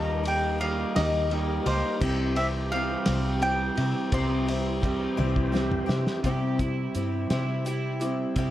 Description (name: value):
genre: folk rock and heartland rock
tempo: 57 BPM (dotted quarters)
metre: 6/8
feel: straight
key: C major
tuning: A4 = 439 Hz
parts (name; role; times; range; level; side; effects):
- mandolin; melody; 0.0-5.5 s; C5 to C6; -30 LUFS; right 1 dB; tape echo
- picked twelve-string acoustic guitar; accompaniment; 0.0-8.5 s; C3 to G4; -32 LUFS; left 6 dB; none
- bright tonewheel organ; sustained chords; 0.0-6.2 s; E3 to C5; -40 LUFS; equal; none
- electric guitar through a small old amp; riff; 0.0-8.5 s; C3 to G4; -30 LUFS; right 4 dB; none
- vintage muted fingered electric bass; bass; 0.0-8.5 s; C2 to C3; -29 LUFS; equal; none
- cloth-damped thuddy drum kit; drums; 0.3-8.5 s; crash cymbal, hi-hat, kick drum, ride cymbal, snare drum, toms; -32 LUFS; equal; none
- overdriven slide guitar; second line; 6.2-8.0 s; E4 to G4; -36 LUFS; right 5 dB; none
room: small room ambience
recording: dark, warm production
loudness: -24 LUFS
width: side -13 dB against mid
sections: 0.0-6.2 A section; 6.2-8.5 B section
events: drum fill 5.2-6.2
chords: 0.0 Eb; 2.0 C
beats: 0.95 | 2.01 3.07 | 4.12 5.18 | 6.24 7.30 | 8.36